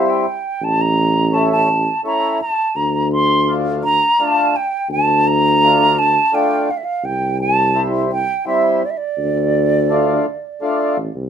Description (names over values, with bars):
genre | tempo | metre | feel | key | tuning
klezmer | 84 BPM | 3/4 | straight | D minor | A4 = 440 Hz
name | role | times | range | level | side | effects
hollow concert flute | melody | 0.0-10.6 s | D5 to C6 | -16 LUFS | right 2 dB | none
mellow accordion | accompaniment | 0.0-11.0 s | G3 to F4 | -18 LUFS | left 1 dB | none
warm tuba | bass | 0.6-11.3 s | A1 to D2 | -18 LUFS | left 2 dB | none
room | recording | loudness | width
moderate studio reverb, RT60 0.6 s | minimal, uncompressed stereo recording | -14 LUFS | side -8 dB against mid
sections
0.0-11.3 A section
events
none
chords
0.0 C; 0.6 A; 2.8 Dm; 7.0 C; 9.2 Dm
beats
| 0.61 1.33 2.04 | 2.76 3.47 4.19 | 4.90 5.62 6.33 | 7.05 7.76 8.47 | 9.19 9.90 10.62